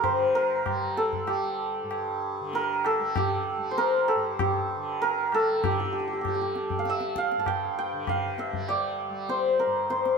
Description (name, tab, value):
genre	indian classical, Hindustani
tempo	97 BPM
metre	3/4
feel	straight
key	G raga kafi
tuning	A4 = 436 Hz
part	santur	melody	0.0-10.2 s	G4 to A5	-25 LUFS	equal	none
part	tanpura	drone	0.0-10.2 s	G2 to G3	-37 LUFS	right 1 dB	none
part	tabla	percussion	0.0-10.2 s	none	-32 LUFS	left 1 dB	none
room	wet stone room reverb, RT60 1.2 s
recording	band playing live in one room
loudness	-24 LUFS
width	side -5 dB against mid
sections	0.0-5.6 A section; 5.6-10.2 B section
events	speeding up 0.0-10.2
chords	none